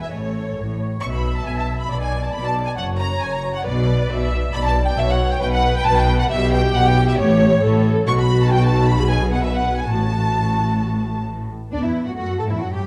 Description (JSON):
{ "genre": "quick classical-period movement for string orchestra", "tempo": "135 BPM", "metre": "4/4", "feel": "straight", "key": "unclear", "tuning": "A4 = 440 Hz", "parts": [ { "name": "rich chamber violin section", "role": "melody", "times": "0.0-12.9 s", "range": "C#5 to C#6", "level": "-27 LUFS", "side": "equal", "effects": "none" }, { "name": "warm studio violin section", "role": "second line", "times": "0.0-12.9 s", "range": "D4 to C#6", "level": "-29 LUFS", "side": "equal", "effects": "none" }, { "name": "rich chamber viola section", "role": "accompaniment", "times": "0.0-12.9 s", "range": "F#3 to E5", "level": "-28 LUFS", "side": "equal", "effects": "none" }, { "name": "rich symphonic cello section", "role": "bass", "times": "0.0-12.9 s", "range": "F#2 to A4", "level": "-25 LUFS", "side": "equal", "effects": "none" }, { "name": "warm chamber double bass section", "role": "bass", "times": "0.0-12.8 s", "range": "F#1 to A2", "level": "-24 LUFS", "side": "equal", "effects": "none" } ], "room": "moderate scoring stage reverb, RT60 1.7 s", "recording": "dark, warm production", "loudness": "-19 LUFS", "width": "mono", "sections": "0.0-11.7 A section; 11.7-12.9 B section", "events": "none", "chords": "0.1 A; 1.0 Bm; 2.8 F#5; 3.7 Bm; 7.2 A7; 8.1 B5; 9.9 F#m/A; 11.7 D" }